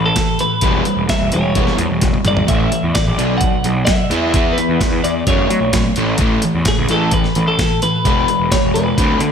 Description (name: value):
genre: indie rock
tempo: 129 BPM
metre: 4/4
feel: straight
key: A major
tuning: A4 = 441 Hz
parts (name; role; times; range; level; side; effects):
- twelve-string electric guitar; melody; 0.0-9.2 s; G#4 to F#5; -19 LUFS; left 1 dB; digital delay
- crunchy overdriven guitar; riff; 0.0-9.3 s; A2 to E4; -18 LUFS; equal; none
- fuzz picked electric bass; bass; 0.0-9.3 s; E1 to F#3; -20 LUFS; equal; overdrive
- breakbeat sampler-style drum kit; drums; 0.2-9.3 s; hi-hat, kick drum, snare drum, toms; -19 LUFS; equal; none
room: moderate lush hall reverb, RT60 1.8 s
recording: big arena sound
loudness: -13 LUFS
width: side -7 dB against mid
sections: 0.0-9.3 A section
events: drum fill 2.0-2.5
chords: 0.0 A5; 0.6 Em; 2.5 A5; 3.2 B5; 4.1 E5; 5.3 F#m; 6.0 A5; 8.1 E